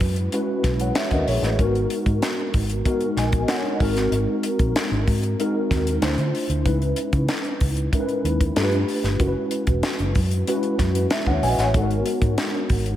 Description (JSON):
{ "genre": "polished 1980s jazz-funk pop", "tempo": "94 BPM", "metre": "4/4", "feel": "straight", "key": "G# minor", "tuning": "A4 = 440 Hz", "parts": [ { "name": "mellow tine electric piano", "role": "accompaniment", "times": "0.0-13.0 s", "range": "G#3 to G#5", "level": "-23 LUFS", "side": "left 1 dB", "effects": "medium stereo tremolo, ensemble chorus" }, { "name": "vintage muted fingered electric bass", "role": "bass", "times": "0.0-13.0 s", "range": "E1 to D3", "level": "-23 LUFS", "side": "equal", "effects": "none" }, { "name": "tight funk drum kit", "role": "drums", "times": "0.0-13.0 s", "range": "hi-hat, kick drum, snare drum", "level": "-24 LUFS", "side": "equal", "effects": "gated reverb" } ], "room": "light reverb, small room ambience", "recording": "none", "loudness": "-19 LUFS", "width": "side -12 dB against mid", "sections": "0.0-13.0 A section", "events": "none", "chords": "0.0 F#7sus4; 1.6 G#m7; 3.8 G#7; 6.0 Dm9; 6.7 C#m9; 8.6 G9; 9.2 F#7sus4; 11.7 G#m7" }